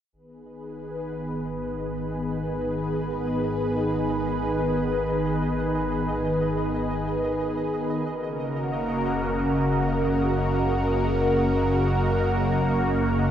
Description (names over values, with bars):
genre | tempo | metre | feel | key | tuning
ambient, sequencer-driven space music | free time | none | none | G# minor | A4 = 440 Hz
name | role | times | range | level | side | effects
lush unison pad | sustained chords | 0.1-13.3 s | C#3 to B4 | -24 LUFS | equal | chorus, phaser
fat analog bass | bass | 0.1-13.3 s | F#1 to G#1 | -31 LUFS | equal | none
pulsing gated texture | texture | 0.9-13.3 s | D#5 | -39 LUFS | right 3 dB | chorus, built-in reverb
room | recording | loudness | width
wet huge ambient reverb, RT60 8.0 s | none | -23 LUFS | side -10 dB against mid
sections
0.1-13.3 A section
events
fade-in on analog synth bass 0.1-13.3; fade-in on synth texture 0.1-13.3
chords
0.1 G#m; 8.1 F#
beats
free time